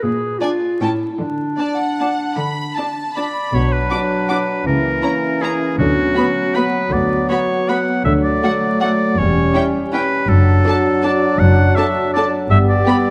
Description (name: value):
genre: classical, orchestral ballroom waltz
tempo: 143-174 BPM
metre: 3/4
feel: rubato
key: D major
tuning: A4 = 440 Hz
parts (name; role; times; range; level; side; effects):
- warm clarinet; second line; 0.0-13.1 s; A3 to Ab4; -26 LUFS; equal; none
- rich studio cello section; bass; 0.0-12.8 s; E2 to D3; -24 LUFS; equal; none
- warm studio violin section; melody; 0.4-13.0 s; F#5 to D6; -29 LUFS; equal; none
- warm studio violin section; second line; 0.4-12.9 s; E4 to B5; -28 LUFS; equal; none
- rich studio viola section; accompaniment; 0.4-12.9 s; A3 to D4; -27 LUFS; equal; none
- bright oboe; second line; 3.2-13.1 s; F#4 to F#5; -23 LUFS; equal; none
- dark bassoon; accompaniment; 3.5-13.1 s; E3 to G3; -24 LUFS; equal; none
- mellow French horn section; sustained chords; 3.5-13.1 s; F#3 to G4; -25 LUFS; equal; none
- rich studio double bass section; bass; 3.5-12.8 s; E1 to D2; -21 LUFS; equal; none
- timpani; percussion; 5.8-8.6 s; D3; -30 LUFS; equal; none
room: moderate concert hall reverb, RT60 2.3 s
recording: vinyl crackle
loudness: -17 LUFS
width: mono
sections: 0.0-3.5 A section; 3.5-13.1 B section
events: none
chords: 0.0 Bb7(no3); 0.8 A7; 1.2 D; 3.5 Bm; 4.7 A#dim/C#; 5.8 Bm/D; 8.1 D; 9.2 C#dim/E; 10.3 D/F#; 12.5 G